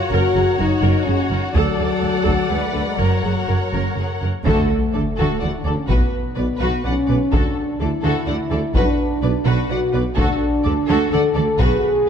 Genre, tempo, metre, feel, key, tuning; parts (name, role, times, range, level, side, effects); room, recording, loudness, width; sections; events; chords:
cinematic, epic orchestral film score; 126 BPM; 3/4; straight; A4 = 440 Hz
warm symphonic violin section; melody; 0.0-11.8 s; F#4 to F#5; -29 LUFS; left 3 dB
rich symphonic violin section; second line; 0.0-12.1 s; F#4 to F#5; -28 LUFS; left 4 dB
rich studio viola section; accompaniment; 0.0-12.1 s; G#4 to D5; -27 LUFS; right 1 dB
mellow French horn section; sustained chords; 0.0-12.1 s; F#3 to A4; -21 LUFS; left 2 dB
rich symphonic cello section; bass; 0.1-11.7 s; D2 to D3; -24 LUFS; right 2 dB
rich symphonic double bass section; bass; 0.1-11.7 s; F#1 to D2; -24 LUFS; right 3 dB
taiko ensemble; drums; 1.5-12.0 s; -23 LUFS; equal
warm tuba; bass; 4.5-11.7 s; B1 to D2; -27 LUFS; right 3 dB
sub drop; sound effects; 4.6-5.9 s; -29 LUFS; equal
moderate scoring stage reverb, RT60 2.2 s; dark, warm production; -16 LUFS; side -8 dB against mid
0.0-4.5 A section; 4.5-12.1 B section
band accent 4.5-4.9; impact 4.5-5.9
0.0 F#; 1.5 D; 3.0 F#; 4.5 D; 5.9 B5; 7.3 D; 8.7 Bm; 10.2 D